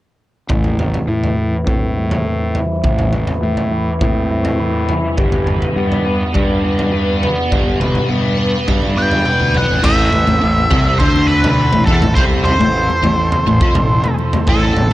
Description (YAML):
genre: psychedelic rock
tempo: 103 BPM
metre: 4/4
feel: straight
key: A minor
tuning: A4 = 440 Hz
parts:
  - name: biting overdriven guitar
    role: riff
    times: 0.5-14.9 s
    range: A2 to B4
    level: -18 LUFS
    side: left 1 dB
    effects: rotary speaker, low-pass filter, analog delay
  - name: fuzz fingered electric bass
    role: bass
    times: 0.5-14.9 s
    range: G1 to A2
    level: -19 LUFS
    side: equal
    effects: overdrive
  - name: raw garage drum kit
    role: drums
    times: 0.5-14.9 s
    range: crash cymbal, kick drum, toms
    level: -18 LUFS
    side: equal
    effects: none
  - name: octave-fuzz lead guitar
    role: melody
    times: 9.0-14.9 s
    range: A4 to G5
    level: -17 LUFS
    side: right 1 dB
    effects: wah, distortion, analog delay
  - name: overdriven combo organ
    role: sustained chords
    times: 9.8-14.9 s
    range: E3 to A4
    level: -26 LUFS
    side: right 6 dB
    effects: none
  - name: congas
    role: percussion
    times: 10.3-14.5 s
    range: none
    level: -27 LUFS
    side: left 10 dB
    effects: none
room: light reverb, small room ambience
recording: echo-heavy mix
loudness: -13 LUFS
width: side -16 dB against mid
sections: 0.5-9.9 A section; 9.9-14.9 B section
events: filter sweep on overdriven electric guitar 0.5-9.9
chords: 0.5 Amadd9; 5.2 G; 9.9 Am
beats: | 0.50 1.09 1.67 2.26 | 2.84 3.43 4.01 4.60 | 5.18 5.77 6.35 6.94 | 7.52 8.11 8.69 9.27 | 9.85 10.43 11.02 11.60 | 12.18 12.76 13.33 13.91 | 14.49